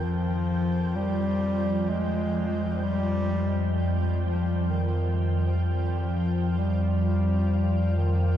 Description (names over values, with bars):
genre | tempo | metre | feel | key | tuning
dark ambient drone | free time | none | none | unclear | A4 = 440 Hz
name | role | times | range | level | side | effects
warm bass clarinet | melody | 0.0-8.4 s | Eb3 to Ab3 | -28 LUFS | left 1 dB | diffuse ambient delay
granular cloud pad | sustained chords | 0.0-8.4 s | F3 to G5 | -36 LUFS | left 2 dB | built-in reverb
clear baby grand piano | arpeggios | 0.0-8.4 s | none | barely audible | none | none
organ-like drone | drone | 0.0-8.4 s | F2 to F3 | -26 LUFS | equal | ensemble chorus, built-in reverb
wind-like tuned noise texture | texture | 0.0-8.4 s | F5 to G5 | -42 LUFS | right 4 dB | built-in reverb
room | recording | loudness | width
wet huge ambient reverb, RT60 8.4 s | dark, warm production | -23 LUFS | side -10 dB against mid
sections
0.0-8.4 A section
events
none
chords
0.0 Fsus2